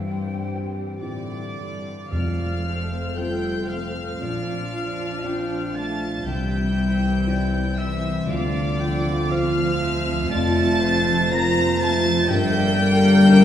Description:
cinematic; 52-61 BPM; 4/4; rubato; F major; A4 = 435 Hz
warm symphonic violin section; melody; 0.0-13.4 s; C5 to Bb6; -31 LUFS; left 1 dB
flute section; second line; 0.0-1.0 s; G5; -39 LUFS; left 3 dB
warm symphonic violin section; second line; 0.0-13.4 s; C4 to Bb5; -32 LUFS; left 2 dB
dark baby grand piano; accompaniment; 0.0-13.4 s; Bb1 to C5; -28 LUFS; left 1 dB
dark symphonic viola section; accompaniment; 0.0-13.4 s; E3 to Bb4; -30 LUFS; equal
concert harp; arpeggios; 0.0-13.4 s; F2 to C5; -30 LUFS; left 4 dB
dark chamber cello section; bass; 0.0-13.4 s; G2 to Bb3; -23 LUFS; left 1 dB
clear oboe; second line; 1.0-13.4 s; D5 to Bb5; -31 LUFS; right 2 dB
bright clarinet; second line; 2.1-13.4 s; C5 to G5; -33 LUFS; right 1 dB
mellow French horn section; sustained chords; 2.1-13.4 s; D3 to D4; -30 LUFS; left 1 dB
warm symphonic double bass section; bass; 2.1-13.4 s; F1 to D2; -29 LUFS; right 2 dB
timpani; percussion; 2.1-3.7 s; F2; -30 LUFS; right 1 dB
wet concert hall reverb, RT60 2.5 s; small room ambience; -20 LUFS; side -10 dB against mid
0.0-2.1 A section; 2.1-13.4 A section
0.0 C/G; 2.1 F; 4.2 Bb; 6.3 C; 8.3 Dm7; 10.3 F; 12.3 Gm

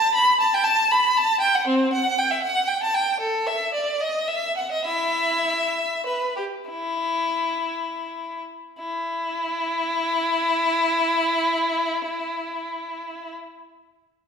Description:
classical, baroque-style suite movement for unaccompanied violin; 52-79 BPM (dotted quarters); 12/8; rubato; E minor; A4 = 444 Hz
rich violin; solo; 0.0-13.3 s; C4 to B5; -21 LUFS; equal
wet recital hall reverb, RT60 1.4 s; heard from further back in the room; -20 LUFS; side -6 dB against mid
0.0-8.8 A section; 8.8-13.2 B section
slowing down 2.7-8.8

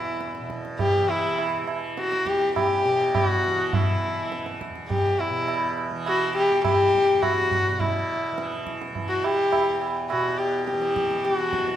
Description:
indian classical, Hindustani; 103 BPM; 7/4; straight; A4 = 441 Hz
rich sarangi; melody; 0.0-11.8 s; E4 to G4+20c; -23 LUFS; left 1 dB
tanpura; drone; 0.0-11.8 s; E2 to E3; -32 LUFS; right 2 dB
tabla; percussion; 0.2-11.8 s; -28 LUFS; right 3 dB
moderate recital hall reverb, RT60 1.5 s; minimal, uncompressed stereo recording; -21 LUFS; side -11 dB against mid
0.0-11.8 A section
speeding up 0.0-11.8

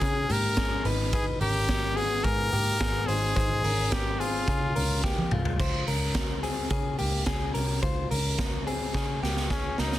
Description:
jangly indie pop; 108 BPM; 4/4; straight; A4 = 441 Hz
brilliant trumpet; melody; 0.0-5.0, 9.5-10.0 s; Db4 to Bb4; -30 LUFS; left 1 dB
direct-recorded clean electric guitar; arpeggios; 0.0-10.0 s; Ab3 to C5; -32 LUFS; left 4 dB; tape echo
vintage muted picked electric bass; bass; 0.0-10.0 s; Ab1 to Db3; -30 LUFS; equal
raw garage drum kit; drums; 0.0-10.0 s; crash cymbal, hi-hat, kick drum, snare drum, toms; -29 LUFS; right 1 dB
light reverb; dense, heavily limited modern master; -25 LUFS; side -14 dB against mid
0.0-5.6 A section; 5.6-10.0 B section
drum fill 5.0-5.6, 8.9-10.0
0.0 Db5; 0.9 Abm; 3.1 Ab; 4.5 Db6

